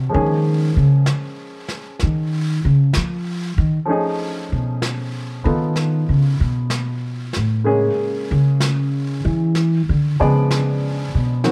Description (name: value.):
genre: jazz ballad.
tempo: 64 BPM.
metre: 4/4.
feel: swing 68% on 8ths.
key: unclear.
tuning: A4 = 440 Hz.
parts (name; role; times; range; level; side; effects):
clear baby grand piano; accompaniment; 0.0-11.5 s; Db3 to D5; -25 LUFS; equal; none.
upright bass; bass; 0.0-11.5 s; A2 to F3; -20 LUFS; equal; none.
brushed snare drum and snare drum; drums; 0.1-11.5 s; none; -32 LUFS; equal; none.
room: light reverb.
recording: none.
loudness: -19 LUFS.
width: mono.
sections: 0.0-11.5 A section.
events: upright bass solo 0.0-11.5.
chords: 0.1 Db6; 3.9 F7alt; 7.7 Bbm7; 9.6 Bdim7.